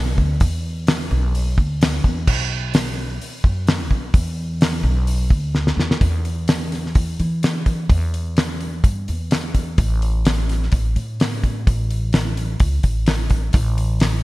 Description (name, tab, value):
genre	folk rock and heartland rock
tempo	128 BPM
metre	4/4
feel	straight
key	unclear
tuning	A4 = 439 Hz
part	upright bass	bass	0.0-14.2 s	A1 to E3	-21 LUFS	equal	none
part	damped 70s drum kit	drums	0.2-14.1 s	crash cymbal, hi-hat, kick drum, snare drum	-18 LUFS	equal	gated reverb
room	light reverb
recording	bright 1980s-style digital production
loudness	-17 LUFS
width	side -19 dB against mid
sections	0.0-6.0 A section; 6.0-14.2 B section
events	drum fill 5.5-6.0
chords	none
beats	| 0.42 0.89 1.35 1.82 | 2.28 2.75 3.21 3.68 | 4.15 4.61 5.08 5.55 | 6.02 6.49 6.96 7.43 | 7.90 8.37 8.84 9.31 | 9.78 10.25 10.72 11.20 | 11.67 12.14 12.61 13.08 | 13.55 14.02